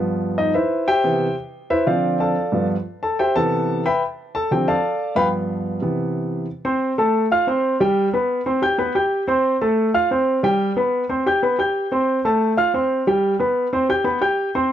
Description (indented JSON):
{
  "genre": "latin",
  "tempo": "182 BPM",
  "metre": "4/4",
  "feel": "straight",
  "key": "C major",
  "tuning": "A4 = 440 Hz",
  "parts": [
    { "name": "warm concert grand piano", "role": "solo", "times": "0.0-14.7 s", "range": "G2 to G6", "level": "-18 LUFS", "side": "equal", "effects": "none" }
  ],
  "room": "small room ambience",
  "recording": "dry, close 1970s-style studio recording",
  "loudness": "-18 LUFS",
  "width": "side -10 dB against mid",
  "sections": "0.0-6.5 A section; 6.5-14.7 B section",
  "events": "grand piano solo 0.0-6.5",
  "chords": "0.0 G7; 0.5 Cmaj7; 1.9 Dm7; 2.5 G7; 3.2 Cmaj7; 4.5 Dm7; 5.2 G7; 5.8 Cmaj7; 6.5 Am; 7.1 F/A; 7.8 G; 8.5 C5; 9.8 F/A; 10.4 G; 11.1 C5; 12.4 F/A; 13.1 G; 13.7 C5"
}